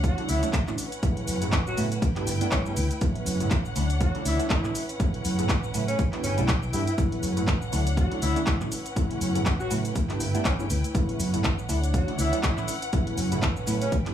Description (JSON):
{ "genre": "filtered disco house", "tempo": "121 BPM", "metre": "4/4", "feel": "swing 57% on 16ths", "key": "A mixolydian", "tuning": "A4 = 439 Hz", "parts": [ { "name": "mellow horn section", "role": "melody", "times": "0.0-13.9 s", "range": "C#3 to F#4", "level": "-32 LUFS", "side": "left 1 dB", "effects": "vintage 12-bit sampler grit, sidechain pumping, tape echo" }, { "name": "muted studio string section", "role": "sustained chords", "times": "0.0-14.1 s", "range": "C#4 to G5", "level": "-34 LUFS", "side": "equal", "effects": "sidechain pumping" }, { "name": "fingered electric bass", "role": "bass", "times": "0.0-14.1 s", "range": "G1 to A2", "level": "-28 LUFS", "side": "equal", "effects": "transformer saturation, sidechain pumping" }, { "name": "electronic kick drum", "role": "drums", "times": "0.0-14.0 s", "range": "none", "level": "-26 LUFS", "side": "equal", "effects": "none" }, { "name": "punchy analog drum machine", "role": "drums", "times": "0.0-14.1 s", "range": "handclaps, hi-hat, shaker", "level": "-33 LUFS", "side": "equal", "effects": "sidechain pumping on hats, sidechain pumping on perc" }, { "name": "funky polysynth comp", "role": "accompaniment", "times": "0.2-14.1 s", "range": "C#3 to E4", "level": "-32 LUFS", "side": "right 1 dB", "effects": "chorus, phaser, sidechain pumping" } ], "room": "digital ambience", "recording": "dry, gritty hardware recording, small room ambience", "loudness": "-23 LUFS", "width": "side -10 dB against mid", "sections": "0.0-14.1 A section", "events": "none", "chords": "0.0 Dmaj7; 0.8 A69; 2.0 G6; 3.0 A69; 3.8 Dmaj7; 4.7 A69; 6.0 G6; 7.0 A69; 7.7 Dmaj7; 8.7 A69; 10.0 G6; 10.9 A69; 11.7 Dmaj7; 12.7 A69" }